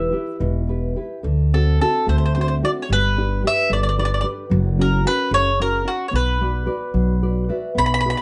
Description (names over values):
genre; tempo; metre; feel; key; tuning
italian folk, Italian serenade; 73 BPM (dotted quarters); 6/8; rubato; B minor; A4 = 440 Hz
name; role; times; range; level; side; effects
mandolin; melody; 0.0-8.2 s; F#4 to B5; -24 LUFS; equal; none
nylon-string guitar; accompaniment; 0.0-8.2 s; B2 to E5; -26 LUFS; equal; none
upright bass; bass; 0.0-8.1 s; E1 to D2; -22 LUFS; equal; none
room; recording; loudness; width
light reverb; nothing above 10.5 kHz; -20 LUFS; mono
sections
0.0-7.8 A section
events
nylon-string guitar fill 7.0-7.8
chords
0.0 Em; 1.2 D7; 2.9 G; 4.5 F#; 6.1 Bm